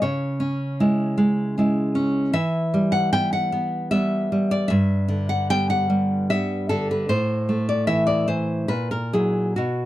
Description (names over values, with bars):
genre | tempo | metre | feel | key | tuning
romantic piece for solo classical guitar | 76 BPM | 3/4 | rubato | E minor | A4 = 440 Hz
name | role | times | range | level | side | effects
nylon-string guitar | solo | 0.0-9.9 s | G2 to G5 | -20 LUFS | equal | none
room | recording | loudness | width
light reverb | dry, close 1970s-style studio recording | -20 LUFS | side -15 dB against mid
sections
0.0-9.9 A section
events
none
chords
0.0 C#m; 2.3 Em; 4.7 G; 7.1 A5; 8.7 F#7/A#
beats
| 0.02 0.79 1.56 | 2.34 3.12 3.92 | 4.70 5.50 6.29 | 7.08 7.87 8.69 | 9.56